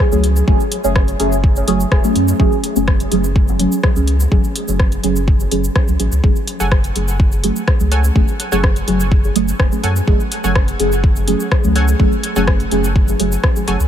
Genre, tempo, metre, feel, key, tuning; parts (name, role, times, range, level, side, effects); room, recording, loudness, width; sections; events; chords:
dub techno; 125 BPM; 4/4; straight; F# minor; A4 = 440 Hz
deep house drum kit; drums; 0.0-13.9 s; hi-hat, rim click, shaker; -24 LUFS; left 1 dB
electronic kick drum; drums; 0.0-13.5 s; -14 LUFS; equal
deep mellow chord stab; stabs; 0.1-13.8 s; F#3 to G#4; -18 LUFS; right 1 dB; chorus, phaser, sidechain pumping, dub echo
warm sub bass; bass; 0.1-13.9 s; E1 to F#2; -18 LUFS; equal; tube saturation, sidechain pumping
filtered dub chord stab; riff; 6.6-13.8 s; A4 to G#5; -25 LUFS; right 1 dB; chorus, sidechain pumping, dub echo
light reverb, digital ambience; -13 LUFS; side -10 dB against mid
0.0-13.9 A section
filter sweep on synth stab 0.0-13.9
0.0 F#madd9